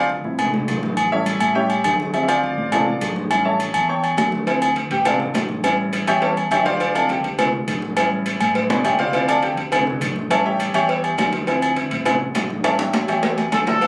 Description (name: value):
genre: latin, salsa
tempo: 206 BPM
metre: 4/4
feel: straight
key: D minor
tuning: A4 = 442 Hz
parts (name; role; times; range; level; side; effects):
- clear upright piano; accompaniment; 0.0-13.9 s; F3 to C#6; -24 LUFS; equal; none
- fingered electric bass; bass; 0.0-13.9 s; A1 to A2; -30 LUFS; equal; none
- congas; percussion; 0.1-13.9 s; none; -30 LUFS; equal; none
- agogo bells and timbales; percussion; 0.4-13.9 s; none; -24 LUFS; equal; none
- cowbell and bongos; percussion; 4.5-13.9 s; none; -28 LUFS; equal; none
- warm trumpet; melody; 13.5-13.9 s; A4; -21 LUFS; equal; none
room: moderate small room ambience, RT60 0.5 s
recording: recorded on a phone in the room, club reverb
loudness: -20 LUFS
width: mono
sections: 0.0-13.8 A section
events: upright piano solo 0.0-13.8; drum fill 8.6-9.1, 12.6-13.8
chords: 0.0 Dm7; 1.0 A7; 2.1 Dm7; 3.3 A7; 4.5 Dm7; 5.6 A7; 6.8 Dm7; 8.0 A7; 9.1 Dm7; 10.3 A7; 11.5 Dm7; 12.6 A7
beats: 0.09 0.38 0.68 | 0.97 1.26 1.55 1.85 | 2.14 2.43 2.72 3.01 | 3.31 3.60 3.89 4.18 | 4.47 4.76 5.05 5.35 | 5.64 5.93 6.22 6.51 | 6.80 7.09 7.39 7.68 | 7.97 8.26 8.55 8.85 | 9.14 9.43 9.72 10.01 | 10.31 10.60 10.89 11.18 | 11.47 11.77 12.06 12.35 | 12.64 12.94 13.23 13.52 | 13.81